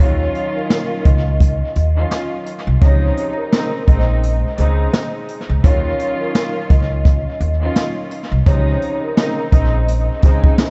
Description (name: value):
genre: hip hop, boom-bap hip-hop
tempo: 85 BPM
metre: 4/4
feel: swing 58% on 16ths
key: unclear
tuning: A4 = 440 Hz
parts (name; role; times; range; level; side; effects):
- vibraphone with soft mallets; melody; 0.0-10.7 s; Bb4 to Eb5; -27 LUFS; equal; high-pass filter, low-pass filter, tape echo
- muted studio string section; accompaniment; 0.0-10.7 s; C3 to F4; -26 LUFS; equal; cassette tape, high-pass filter, low-pass filter, tape echo
- upright bass; bass; 0.0-10.5 s; Bb1 to Eb2; -19 LUFS; equal; none
- jazz brush drum kit; drums; 0.0-10.7 s; hi-hat, kick drum, snare drum; -17 LUFS; equal; none
room: studio ambience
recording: echo-heavy mix, vinyl crackle, nothing above 8.0 kHz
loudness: -16 LUFS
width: mono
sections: 0.0-10.7 A section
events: break 4.2-5.6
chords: 0.0 Ebm9; 2.8 Dbmaj9; 3.9 Bbm11; 5.6 Ebm9; 8.5 Dbmaj9; 9.5 Bbm11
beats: 0.70 1.41 2.11 | 2.82 3.52 4.23 4.93 | 5.64 6.35 7.05 7.76 | 8.46 9.17 9.88 10.58